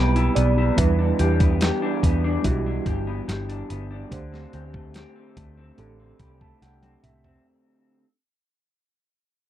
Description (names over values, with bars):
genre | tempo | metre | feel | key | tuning
indie pop, bedroom pop | 72 BPM | 4/4 | straight | unclear | A4 = 440 Hz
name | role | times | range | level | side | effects
electric guitar through a small old amp | accompaniment | 0.0-8.0 s | D3 to G4 | -26 LUFS | left 3 dB | lush chorus, warbly pitch drift
mellow reed electric piano | accompaniment | 0.0-7.5 s | G3 to B5 | -28 LUFS | right 7 dB | fast tremolo
vintage muted picked electric bass | bass | 0.0-7.4 s | G1 to E2 | -23 LUFS | equal | none
dusty soul sampler-style drum kit | drums | 0.2-7.4 s | hi-hat, kick drum, snare drum, toms | -23 LUFS | equal | none
room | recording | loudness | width
little or no reverb | dry, close 1970s-style studio recording | -19 LUFS | side -12 dB against mid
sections
0.0-7.5 A section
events
fade-out 0.0-7.5; reed electric piano fill 0.0-0.8, 5.8-7.5; drum fill 6.6-7.5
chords
0.0 Cmaj7; 0.8 Em7; 4.1 D7sus4